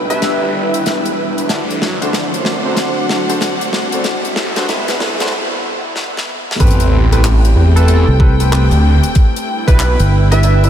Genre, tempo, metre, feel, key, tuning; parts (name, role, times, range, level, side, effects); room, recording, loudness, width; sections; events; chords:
glitch hop; 94 BPM; 4/4; swing 63% on 16ths; A dorian; A4 = 439 Hz
plucky unison lead; melody; 0.0-1.0, 7.8-10.7 s; A4 to E5; -22 LUFS; right 1 dB; analog delay
warbly tape-like pad; sustained chords; 0.0-10.7 s; C3 to B4; -22 LUFS; equal; chorus, built-in reverb, vintage 12-bit sampler grit, sidechain pumping
phased detuned saw bass; bass; 0.0-10.0 s; E1 to F#2; -14 LUFS; equal; phaser, tube saturation, high-pass filter
riser and sub drop; sound effects; 0.0-9.2 s; -24 LUFS; equal
rich studio string section; texture; 0.0-10.7 s; D4 to G5; -23 LUFS; equal; sidechain pumping
clear grand piano; stabs; 0.1-10.7 s; C4 to C5; -22 LUFS; equal; wide subtle chorus, sidechain pumping, analog delay
tight metal drum kit; drums; 0.1-10.7 s; handclaps, hi-hat, snare drum; -21 LUFS; left 1 dB
electronic kick drum; drums; 6.6-9.8 s; -10 LUFS; equal
fingered electric bass; bass; 8.1-10.7 s; G1 to C2; -11 LUFS; equal; tube saturation
moderate huge ambient reverb, RT60 7.5 s; dreamy mix soaked in reverb, high-pass filter; -12 LUFS; side -10 dB against mid
0.0-6.6 A section; 6.6-10.7 B section
build-up 0.0-6.6; drum fill 0.0-5.3, 6.0-6.6; riser 0.0-5.3; filter sweep on ambient pad 0.0-6.6; filter sweep 0.0-6.6; break 5.3-6.6; drop 6.6-10.7; impact 6.6-9.2
0.0 G6; 1.5 D7; 4.0 Cmaj7; 6.6 Am9; 9.2 G6